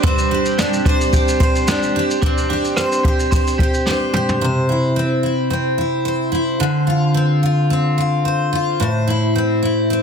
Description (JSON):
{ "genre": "acoustic pop", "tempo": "110 BPM", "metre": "4/4", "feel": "swing 55% on 16ths", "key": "C major", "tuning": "A4 = 440 Hz", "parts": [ { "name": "picked steel-string acoustic guitar", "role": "accompaniment", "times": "0.0-10.0 s", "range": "A2 to C5", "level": "-16 LUFS", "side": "left 1 dB", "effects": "double-tracked left and right" }, { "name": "clean electric guitar", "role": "arpeggios", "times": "0.0-5.0 s", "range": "G3 to C5", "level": "-24 LUFS", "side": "right 9 dB", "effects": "ensemble chorus" }, { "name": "jazz brush drum kit", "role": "drums", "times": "0.0-4.4 s", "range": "kick drum, rim click, shaker, snare drum, toms", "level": "-18 LUFS", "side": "equal", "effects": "none" } ], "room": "light reverb", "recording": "dense, heavily limited modern master", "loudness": "-15 LUFS", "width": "side -6 dB against mid", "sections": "0.0-2.2 A section; 2.2-4.4 B section; 4.4-10.0 C section", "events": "drum fill 3.9-4.4", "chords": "0.0 Csus2; 4.4 C; 6.6 Dm7; 8.8 Am" }